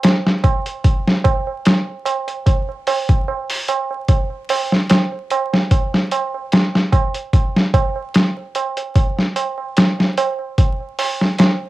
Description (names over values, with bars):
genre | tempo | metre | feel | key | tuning
trip hop | 74 BPM | 4/4 | swing 54% on 16ths | none | none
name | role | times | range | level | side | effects
boom bap sampler-style drum kit | drums | 0.0-11.6 s | hi-hat, kick drum, snare drum | -15 LUFS | equal | overdrive, small room reverb, cassette tape
tabla | percussion | 0.0-11.7 s | none | -22 LUFS | right 6 dB | none
room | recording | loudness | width
light reverb | home recording on cassette, vinyl crackle | -16 LUFS | side -16 dB against mid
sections
0.0-11.7 A section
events
none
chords
none